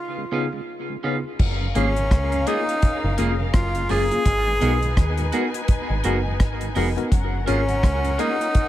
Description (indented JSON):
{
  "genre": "lovers rock reggae",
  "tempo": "84 BPM",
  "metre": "4/4",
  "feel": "swing 59% on 16ths",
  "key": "F# major",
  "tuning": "A4 = 439 Hz",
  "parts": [
    { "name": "breathy tenor saxophone", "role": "melody", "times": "0.0-8.7 s", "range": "C#4 to G#4", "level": "-25 LUFS", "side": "equal", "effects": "tape echo" },
    { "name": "mellow tonewheel organ", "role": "accompaniment", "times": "0.2-8.5 s", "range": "F#2 to F#4", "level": "-35 LUFS", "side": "right 4 dB", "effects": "overdrive, chorus vibrato, slow rotary speaker" },
    { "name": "tine electric piano", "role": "accompaniment", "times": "0.3-8.3 s", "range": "C#3 to A#4", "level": "-29 LUFS", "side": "left 4 dB", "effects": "overdrive, fast stereo tremolo, tape echo" },
    { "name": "clean electric guitar", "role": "stabs", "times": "0.3-8.3 s", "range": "A#3 to B4", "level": "-30 LUFS", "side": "right 6 dB", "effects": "tape echo" },
    { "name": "muted studio string section", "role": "second line", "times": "1.4-8.7 s", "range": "C#4 to G#5", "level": "-31 LUFS", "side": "left 3 dB", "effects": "none" },
    { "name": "deep dub picked electric bass", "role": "bass", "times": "1.4-8.2 s", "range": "E#1 to D#2", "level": "-23 LUFS", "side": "equal", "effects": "none" },
    { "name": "deep reggae drum kit", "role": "drums", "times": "1.4-8.7 s", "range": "crash cymbal, hi-hat, kick drum, rim click", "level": "-21 LUFS", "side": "equal", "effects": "none" }
  ],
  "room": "small room ambience",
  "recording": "none",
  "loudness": "-19 LUFS",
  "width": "side -13 dB against mid",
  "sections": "0.0-1.4 A section; 1.4-8.7 B section",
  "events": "break 0.0-1.4",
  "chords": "0.0 C#7; 1.4 F#maj9; 4.3 G#m7; 7.1 F#maj9"
}